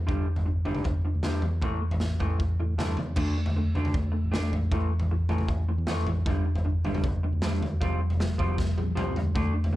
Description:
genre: indie rock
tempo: 155 BPM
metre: 4/4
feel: straight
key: D minor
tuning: A4 = 440 Hz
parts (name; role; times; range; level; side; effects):
- electric guitar through a small old amp; riff; 0.0-9.8 s; G2 to D4; -32 LUFS; equal; none
- fingered electric bass; bass; 0.0-9.8 s; F1 to A2; -36 LUFS; equal; none
- raw garage drum kit; drums; 0.1-9.7 s; crash cymbal, kick drum, snare drum, toms; -26 LUFS; equal; none
room: little or no reverb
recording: dark, warm production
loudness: -25 LUFS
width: side -16 dB against mid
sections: 0.0-3.2 A section; 3.2-9.8 A section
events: drum fill 8.6-9.4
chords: 0.1 G5; 1.6 A5; 3.2 D5; 4.7 A5; 6.3 G5; 7.8 Fsus2

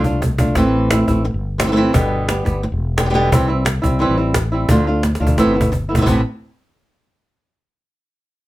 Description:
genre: flamenco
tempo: 174 BPM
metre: 4/4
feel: straight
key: A minor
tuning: A4 = 442 Hz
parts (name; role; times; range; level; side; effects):
- flamenco guitar; melody; 0.0-6.2 s; A2 to G4; -17 LUFS; equal; none
- fretless electric bass; bass; 0.0-6.2 s; E1 to D2; -20 LUFS; equal; none
- cajon; percussion; 0.0-6.1 s; none; -19 LUFS; equal; none
room: light reverb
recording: none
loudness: -14 LUFS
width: side -16 dB against mid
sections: 0.0-6.1 A section; 6.1-7.4 B section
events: drum fill 0.0-0.6, 5.0-6.1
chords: 0.0 Dm; 0.6 Am; 1.9 G; 3.3 C; 4.7 Dm; 5.4 Amadd9; 6.1 N.C.

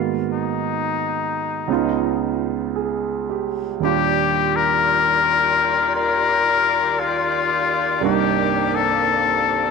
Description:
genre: jazz ballad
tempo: 57 BPM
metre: 4/4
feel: swing 67% on 8ths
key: unclear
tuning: A4 = 440 Hz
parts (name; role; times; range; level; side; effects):
- warm concert grand piano; accompaniment; 0.0-9.7 s; C2 to Ab4; -23 LUFS; right 11 dB; none
- trumpet with straight mute; melody; 0.3-9.7 s; Eb4 to Bb4; -18 LUFS; left 8 dB; none
- bright saxophone section; sustained chords; 3.8-9.7 s; Eb3 to D5; -26 LUFS; equal; none
room: wet spring reverb, RT60 2.0 s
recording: 1960s-style stereo with parts hard left and right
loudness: -17 LUFS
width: side -4 dB against mid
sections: 0.0-9.7 A section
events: none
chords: 0.0 Abm7; 1.7 Db9; 3.8 Ebmaj9; 8.0 Cm9

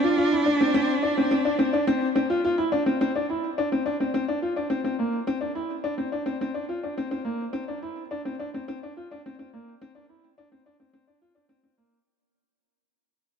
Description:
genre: electronica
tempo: 106 BPM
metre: 4/4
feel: straight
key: unclear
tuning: A4 = 439 Hz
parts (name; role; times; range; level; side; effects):
- dark cello; melody; 0.0-2.4 s; D4; -25 LUFS; right 2 dB; digital delay
- clear upright piano; riff; 0.0-12.0 s; Bb3 to F4; -25 LUFS; left 1 dB; digital delay
room: moderate huge ambient reverb, RT60 4.1 s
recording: dark, warm production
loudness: -23 LUFS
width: side -6 dB against mid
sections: 0.0-3.0 A section; 3.0-12.1 B section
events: drop 0.0-3.0; fade-out 3.0-12.1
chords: 0.0 Csus2; 3.0 Bb

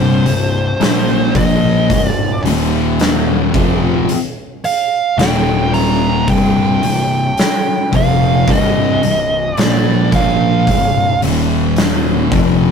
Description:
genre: stoner and doom metal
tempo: 55 BPM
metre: 4/4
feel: straight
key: C minor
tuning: A4 = 441 Hz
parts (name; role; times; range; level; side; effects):
- fuzz lead guitar; melody; 0.0-11.2 s; C5 to Bb5; -17 LUFS; right 3 dB; distortion
- thick fuzz guitar; riff; 0.0-12.7 s; C2 to Bb3; -17 LUFS; left 6 dB; distortion
- thick fuzz guitar; riff; 0.0-12.7 s; C2 to Bb3; -18 LUFS; right 4 dB; distortion
- fuzz picked electric bass; bass; 0.0-12.7 s; C1 to Bb1; -21 LUFS; equal; overdrive, tube saturation
- oversized low-tuned drum kit; drums; 0.3-12.6 s; hi-hat, kick drum, snare drum; -18 LUFS; equal; none
room: light reverb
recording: rough rehearsal-room recording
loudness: -12 LUFS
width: side -6 dB against mid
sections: 0.0-12.7 A section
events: none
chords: 0.0 Cm; 2.4 Eb5; 3.5 F5; 5.2 Eb5; 6.3 Cm; 11.2 Eb5

